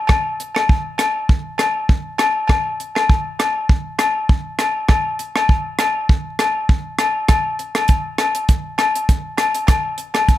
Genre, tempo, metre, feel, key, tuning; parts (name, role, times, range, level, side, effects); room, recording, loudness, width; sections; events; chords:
highlife; 100 BPM; 4/4; swing 55% on 16ths
tight funk drum kit; drums; 0.1-10.4 s; hi-hat, kick drum, rim click; -16 LUFS; right 1 dB
agogo bells; percussion; 0.1-10.3 s; -20 LUFS; left 3 dB
light reverb; -16 LUFS; side -14 dB against mid
0.0-7.3 A section; 7.3-10.4 B section